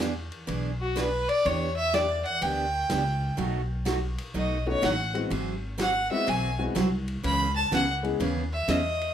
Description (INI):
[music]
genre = country, western swing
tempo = 124 BPM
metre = 4/4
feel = swing 66% on 8ths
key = unclear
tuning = A4 = 440 Hz
[part]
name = picked steel-string acoustic guitar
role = accompaniment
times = 0.0-8.8 s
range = B2 to G#4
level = -30 LUFS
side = right 3 dB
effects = none
[part]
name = upright bass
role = bass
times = 0.0-9.1 s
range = G#1 to E2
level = -31 LUFS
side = equal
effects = none
[part]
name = vintage drum kit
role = drums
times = 0.0-9.1 s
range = hi-hat, ride cymbal, snare drum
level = -37 LUFS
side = left 1 dB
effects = none
[part]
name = rich fiddle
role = melody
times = 0.8-9.1 s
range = F#4 to B5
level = -27 LUFS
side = equal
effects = plate reverb
[part]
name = warm upright piano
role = accompaniment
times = 4.7-8.2 s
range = G#3 to G#4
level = -31 LUFS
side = left 4 dB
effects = none
[sound]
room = moderate studio ambience, RT60 0.5 s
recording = none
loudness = -25 LUFS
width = side -9 dB against mid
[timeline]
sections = 0.0-9.1 A section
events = fiddle solo 0.0-9.1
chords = 0.0 E7; 1.4 Em7; 3.4 B7; 5.3 G#7alt; 7.2 C#m7